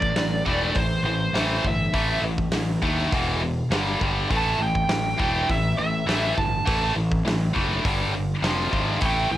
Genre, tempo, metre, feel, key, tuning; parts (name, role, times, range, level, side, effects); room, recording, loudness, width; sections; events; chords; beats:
hard rock; 102 BPM; 4/4; straight; A minor; A4 = 440 Hz
nasal lead guitar with a parked wah; melody; 0.0-9.4 s; C5 to A5; -26 LUFS; right 2 dB; overdrive, cassette tape, plate reverb
tight distorted guitar; riff; 0.0-9.4 s; E2 to A3; -24 LUFS; equal; distortion, cassette tape
growling fingered electric bass; bass; 0.0-9.4 s; E1 to D#2; -28 LUFS; equal; overdrive
huge arena drum kit; drums; 0.0-9.2 s; hi-hat, kick drum, snare drum; -28 LUFS; equal; cassette tape
light reverb; home recording on cassette; -21 LUFS; side -13 dB against mid
0.0-9.4 A section
0.0 Am; 3.1 E5; 3.7 G5; 4.3 A5; 7.8 G5; 8.4 F5
0.17 0.76 1.35 | 1.95 2.54 3.13 3.72 | 4.31 4.90 5.49 6.08 | 6.67 7.26 7.85 8.44 | 9.03